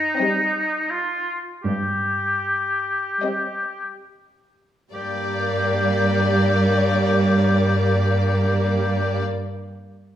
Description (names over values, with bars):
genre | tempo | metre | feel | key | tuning
classical | 33-44 BPM | 4/4 | rubato | G minor | A4 = 440 Hz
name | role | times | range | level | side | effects
clear oboe | second line | 0.0-9.2 s | Eb4 to G4 | -23 LUFS | left 2 dB | none
rich chamber violin section | melody | 0.2-9.2 s | D5 to Eb5 | -27 LUFS | left 4 dB | none
rich chamber violin section | second line | 0.2-9.2 s | Bb3 to C4 | -27 LUFS | left 1 dB | none
rich studio viola section | accompaniment | 0.2-9.2 s | G3 | -25 LUFS | right 2 dB | none
warm chamber cello section | bass | 1.6-9.2 s | G2 | -23 LUFS | right 2 dB | none
room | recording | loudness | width
wet recital hall reverb, RT60 1.4 s | recorded in a church or concert hall | -19 LUFS | side -11 dB against mid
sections
0.0-4.9 A section; 4.9-10.2 B section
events
slowing down 0.0-4.9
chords
0.0 Cm/G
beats
0.18 1.64 3.23 | 4.94 6.51 8.10